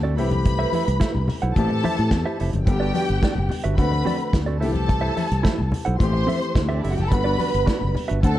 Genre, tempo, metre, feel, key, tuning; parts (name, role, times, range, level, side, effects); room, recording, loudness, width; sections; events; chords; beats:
disco; 108 BPM; 4/4; straight; G major; A4 = 440 Hz
mellow electric guitar; accompaniment; 0.0-8.4 s; C4 to F#5; -29 LUFS; right 5 dB
warm baby grand piano; accompaniment; 0.0-8.4 s; D3 to G4; -28 LUFS; left 5 dB
fingered electric bass; bass; 0.0-8.4 s; F1 to A2; -23 LUFS; equal
warm studio string section; second line; 0.2-8.4 s; C4 to C6; -27 LUFS; equal
warm soul drum kit; drums; 0.2-8.4 s; hi-hat, kick drum, snare drum; -24 LUFS; equal
congas; percussion; 0.3-8.4 s; -30 LUFS; left 3 dB
small room ambience; dark, warm production; -19 LUFS; side -13 dB against mid
0.0-8.4 A section
0.2 C6; 1.6 Am7; 2.7 Gmaj7; 3.8 D7; 4.6 C6; 6.0 Am7; 7.1 Gmaj7
| 0.46 1.01 1.57 2.12 | 2.67 3.23 3.78 4.34 | 4.89 5.45 6.00 6.56 | 7.11 7.67 8.23